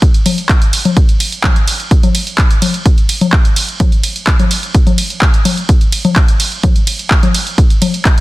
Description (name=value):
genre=techno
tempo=127 BPM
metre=4/4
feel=straight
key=none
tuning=none
part: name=electronic kick drum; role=drums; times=0.0-8.2 s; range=none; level=-10 LUFS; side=equal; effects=none
part: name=punchy analog drum machine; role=drums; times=0.0-8.2 s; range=congas, handclaps, hi-hat, ride cymbal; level=-14 LUFS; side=left 2 dB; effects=none
room=digital ambience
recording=dense, heavily limited modern master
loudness=-10 LUFS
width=side -18 dB against mid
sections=0.0-8.2 A section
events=none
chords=none